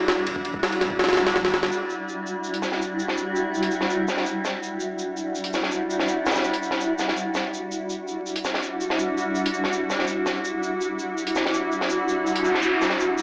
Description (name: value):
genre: drum and bass, jungle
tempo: 165 BPM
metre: 4/4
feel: straight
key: E minor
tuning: A4 = 435 Hz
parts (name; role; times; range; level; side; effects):
- granular cloud pad; sustained chords; 0.0-13.2 s; G3 to F#4; -24 LUFS; equal; built-in reverb
- jungle sampler-style drum kit; drums; 0.1-1.7 s; kick drum, ride cymbal, snare drum; -22 LUFS; equal; none
- soft dub sub bass; bass; 0.3-1.7 s; D1 to B1; -40 LUFS; equal; none
- crunchy breakbeat drum kit; drums; 1.7-13.2 s; hi-hat, shaker, snare drum; -27 LUFS; equal; high-pass filter on hats, high-pass filter on snare, high-pass filter on perc, high-pass filter on room
- noise sweep; sound effects; 12.2-13.2 s; none; -26 LUFS; equal; none
room: wet echo chamber reverb, RT60 2.1 s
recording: dry, gritty hardware recording, vinyl crackle, AM radio sound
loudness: -22 LUFS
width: side -32 dB against mid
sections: 0.0-1.7 A section; 1.7-13.2 B section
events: kick drops out 1.0-1.7; noise sweep 12.2-13.2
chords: 0.0 Em9